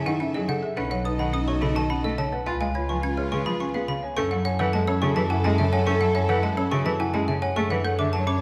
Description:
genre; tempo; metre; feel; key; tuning
classical, minimalist pattern music; 106 BPM; 3/4; straight; F# minor from 4.2 s; A4 = 437 Hz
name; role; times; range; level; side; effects
dark grand piano; melody; 0.0-8.4 s; G#4 to B5; -34 LUFS; equal; none
warm French horn; second line; 0.0-8.4 s; D#4 to C#5; -34 LUFS; equal; none
clear cello; accompaniment; 0.0-8.2 s; C#3 to E#4; -31 LUFS; equal; none
rich studio string section; sustained chords; 0.0-8.4 s; D4 to E5; -38 LUFS; equal; none
xylophone with plastic mallets; arpeggios; 0.0-8.4 s; D#5 to G#6; -34 LUFS; equal; none
rich studio double bass section; bass; 0.0-8.4 s; B1 to F#2; -30 LUFS; equal; none
folk marimba with hard mallets; arpeggios; 0.1-8.4 s; C#4 to E#5; -33 LUFS; equal; none
room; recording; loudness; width
wet scoring stage reverb, RT60 2.0 s; vinyl crackle; -24 LUFS; mono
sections
0.0-4.2 A section; 4.2-8.4 B section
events
none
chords
0.0 F#m9; 0.8 B7; 2.5 C#7; 4.2 F#m7; 7.6 Dmaj9/F#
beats
0.20 | 0.77 1.34 1.90 | 2.47 3.04 3.60 | 4.17 4.73 5.30 | 5.87 6.43 7.00 | 7.56 8.13

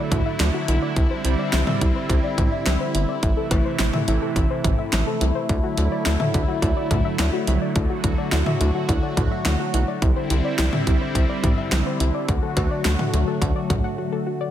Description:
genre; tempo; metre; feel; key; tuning
synth-pop; 106 BPM; 4/4; straight; D mixolydian; A4 = 438 Hz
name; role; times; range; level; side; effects
brassy analog pad; sustained chords; 0.0-14.5 s; C3 to F#4; -25 LUFS; equal; chorus
soft round pluck; arpeggios; 0.0-14.5 s; E4 to F#5; -28 LUFS; left 3 dB; chorus, digital delay
rubbery square bass; bass; 0.1-13.8 s; G1 to D2; -22 LUFS; equal; none
pop drum kit; drums; 0.1-13.8 s; cowbell, hi-hat, kick drum, snare drum, toms; -23 LUFS; equal; none
room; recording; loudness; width
light reverb; none; -19 LUFS; side -11 dB against mid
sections
0.0-14.5 A section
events
break 14.0-14.5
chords
0.0 Dadd9; 1.0 Cadd9; 3.2 Am; 5.5 Dadd9; 10.0 Cadd9; 12.3 D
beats
0.40 | 0.96 1.53 2.10 2.66 | 3.23 3.79 4.36 4.93 | 5.49 6.06 6.62 7.19 | 7.76 8.32 8.89 9.46 | 10.02 10.59 11.15 11.72 | 12.29 12.85 13.42 13.98

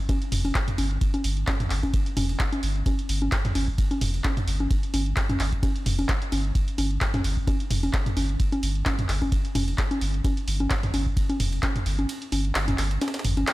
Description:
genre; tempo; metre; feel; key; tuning
acid house; 130 BPM; 4/4; swing 55% on 16ths; unclear; A4 = 440 Hz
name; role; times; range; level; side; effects
warm sub bass; bass; 0.0-13.4 s; F1 to G1; -27 LUFS; equal; sidechain pumping
breakbeat sampler-style drum kit; drums; 0.1-13.5 s; ride cymbal, snare drum; -40 LUFS; right 1 dB; high-pass filter on snare, sidechain pumping on cymbals, high-pass filter on cymbals, high-pass filter on room
electronic kick drum; drums; 0.1-11.7 s; none; -26 LUFS; equal; overdrive
punchy analog drum machine; drums; 0.1-13.5 s; congas, handclaps, hi-hat, toms; -27 LUFS; equal; none
room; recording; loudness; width
light reverb; none; -23 LUFS; side -18 dB against mid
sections
0.0-13.5 A section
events
kick drops out 12.1-13.5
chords
none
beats
0.09 0.55 | 1.01 1.48 1.94 2.40 | 2.86 3.32 3.78 4.24 | 4.71 5.17 5.63 6.09 | 6.55 7.01 7.47 7.94 | 8.40 8.86 9.32 9.78 | 10.24 10.71 11.17 11.63 | 12.09 12.55 13.01 13.47

